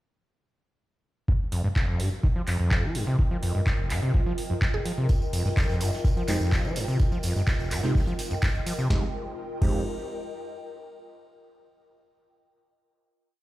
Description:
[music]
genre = acid house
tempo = 126 BPM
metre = 4/4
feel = straight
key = unclear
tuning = A4 = 441 Hz
[part]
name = overdriven acid bass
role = riff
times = 1.3-9.8 s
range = F1 to F3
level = -28 LUFS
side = equal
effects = distortion, cassette tape, sidechain pumping
[part]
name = electronic kick drum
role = drums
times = 1.3-9.7 s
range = none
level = -25 LUFS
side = equal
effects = overdrive
[part]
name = ethereal airy pad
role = texture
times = 2.1-10.8 s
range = F4 to G5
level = -36 LUFS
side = equal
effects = ensemble chorus, built-in reverb, phaser, sidechain pumping
[part]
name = booming analog drum machine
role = drums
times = 1.5-9.7 s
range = crash cymbal, handclaps, hi-hat, snare drum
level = -34 LUFS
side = equal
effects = overdrive
[part]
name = mallet-like synth pluck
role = melody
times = 4.7-5.4 s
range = Ab4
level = -40 LUFS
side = right 3 dB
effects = chorus, dub echo
[part]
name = soft-mallet drum kit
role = drums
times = 5.1-8.9 s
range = hi-hat, snare drum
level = -45 LUFS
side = right 1 dB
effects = high-pass filter on hats, high-pass filter on snare, high-pass filter on room
[part]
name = tambourine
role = percussion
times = 5.1-8.9 s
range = none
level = -41 LUFS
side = right 2 dB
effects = none
[part]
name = deep mellow chord stab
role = stabs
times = 6.3-9.8 s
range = Ab3 to G4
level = -35 LUFS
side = right 3 dB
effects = chorus, dub echo
[sound]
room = light reverb, digital ambience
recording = played on a big sound system in a bare room, stone room reverb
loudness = -24 LUFS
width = side -16 dB against mid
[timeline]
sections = 1.3-8.9 groove; 8.9-10.8 final chord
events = none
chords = 1.3 F7(no3); 8.9 Fm7

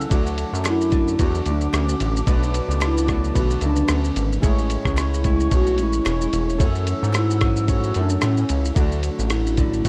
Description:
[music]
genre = indie pop, bedroom pop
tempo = 111 BPM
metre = 4/4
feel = swing 55% on 16ths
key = unclear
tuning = A4 = 441 Hz
[part]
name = flamenco guitar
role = accompaniment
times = 0.0-9.9 s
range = F#2 to E4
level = -32 LUFS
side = equal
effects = lush chorus, warbly pitch drift
[part]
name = warbly lo-fi synth keys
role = accompaniment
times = 0.0-9.9 s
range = D3 to C#5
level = -32 LUFS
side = equal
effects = chorus
[part]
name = dark woodwind section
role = sustained chords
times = 0.0-8.7 s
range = A4 to E6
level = -35 LUFS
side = equal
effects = none
[part]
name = chorused synth bass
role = bass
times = 0.0-9.9 s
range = E1 to A2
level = -25 LUFS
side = equal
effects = none
[part]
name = lo-fi sampler-style drum kit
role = drums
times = 0.0-9.9 s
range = kick drum, ride cymbal, rim click, shaker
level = -26 LUFS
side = equal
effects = none
[part]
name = group handclap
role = percussion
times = 0.6-8.4 s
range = none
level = -40 LUFS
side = equal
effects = none
[part]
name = warbly nostalgic lead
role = melody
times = 0.7-9.9 s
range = C#4 to F#4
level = -26 LUFS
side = equal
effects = lush chorus, slapback echo
[sound]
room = little or no reverb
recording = dark, warm production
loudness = -21 LUFS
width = mono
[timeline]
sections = 0.0-9.9 A section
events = none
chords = 0.1 D; 2.3 Bm7; 4.4 Amaj7; 6.6 F#m7; 8.8 D

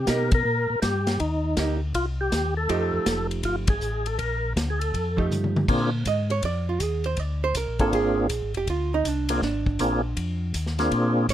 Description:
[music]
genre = soul jazz organ trio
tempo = 160 BPM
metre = 4/4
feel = swing 65% on 8ths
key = Bb mixolydian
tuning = A4 = 441 Hz
[part]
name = percussive tonewheel organ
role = melody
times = 0.0-11.3 s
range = Bb3 to Bb4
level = -25 LUFS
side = left 1 dB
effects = overdrive, chorus vibrato, slow rotary speaker
[part]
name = mellow tonewheel organ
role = bass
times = 0.0-11.3 s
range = F1 to Cb3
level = -27 LUFS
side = left 1 dB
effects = slow rotary speaker
[part]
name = archtop guitar, miked and amplified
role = accompaniment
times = 0.1-11.3 s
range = F3 to Eb5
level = -27 LUFS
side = right 6 dB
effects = none
[part]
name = vintage drum kit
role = drums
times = 0.1-11.3 s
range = crash cymbal, hi-hat, kick drum, ride cymbal, snare drum, toms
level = -28 LUFS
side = left 1 dB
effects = none
[sound]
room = little or no reverb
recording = close, detailed microphones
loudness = -22 LUFS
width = side -11 dB against mid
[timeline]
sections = 0.0-5.7 A section; 5.7-11.3 B section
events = band accent 0.3, 3.6; drum fill 5.3-5.7; hollow-body jazz guitar solo 5.7-11.3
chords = 0.0 Cm7; 2.7 F9; 4.2 Bb; 4.9 F9; 5.7 Bb9; 10.2 Fm7

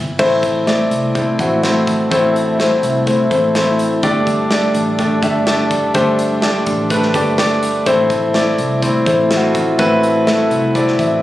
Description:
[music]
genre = piano-driven pop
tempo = 125 BPM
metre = 4/4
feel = straight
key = unclear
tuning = A4 = 440 Hz
[part]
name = warm grand piano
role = accompaniment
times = 0.0-11.2 s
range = G2 to E5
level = -14 LUFS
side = left 1 dB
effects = none
[part]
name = vintage muted picked electric bass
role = bass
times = 0.0-11.2 s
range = G1 to C2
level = -23 LUFS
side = equal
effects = none
[part]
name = warm analog pad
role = sustained chords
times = 0.2-11.2 s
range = G3 to A4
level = -22 LUFS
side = right 1 dB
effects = chorus
[part]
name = modern studio drum kit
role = drums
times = 0.2-11.1 s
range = crash cymbal, hi-hat, kick drum, snare drum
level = -22 LUFS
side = equal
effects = none
[sound]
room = moderate recital hall reverb, RT60 1.4 s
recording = recorded on a phone in the room, studio reverb, compression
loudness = -13 LUFS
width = side -14 dB against mid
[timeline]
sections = 0.2-11.2 A section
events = none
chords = 0.2 Am; 4.0 Gsus2; 7.9 Am

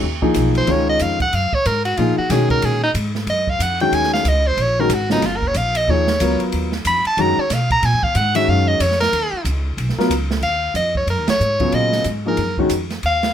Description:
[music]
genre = modal jazz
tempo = 184 BPM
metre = 4/4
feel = swing 62% on 8ths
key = unclear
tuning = A4 = 440 Hz
[part]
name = warm baby grand piano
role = accompaniment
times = 0.0-12.7 s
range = C#3 to A#4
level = -20 LUFS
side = left 2 dB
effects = none
[part]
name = upright bass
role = bass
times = 0.0-13.3 s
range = F#1 to B2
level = -21 LUFS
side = equal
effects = none
[part]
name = open jazz drum kit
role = drums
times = 0.2-13.3 s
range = hi-hat, kick drum, ride cymbal, snare drum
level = -26 LUFS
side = right 3 dB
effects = none
[part]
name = edgy soprano saxophone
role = melody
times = 0.6-13.3 s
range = D#4 to B5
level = -18 LUFS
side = equal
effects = none
[sound]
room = light reverb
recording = none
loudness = -16 LUFS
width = side -9 dB against mid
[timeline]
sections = 0.0-10.4 A section; 10.4-13.3 B section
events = soprano saxophone solo 0.0-10.4; band accent 11.2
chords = 0.0 C#13sus4; 10.4 Ebm11

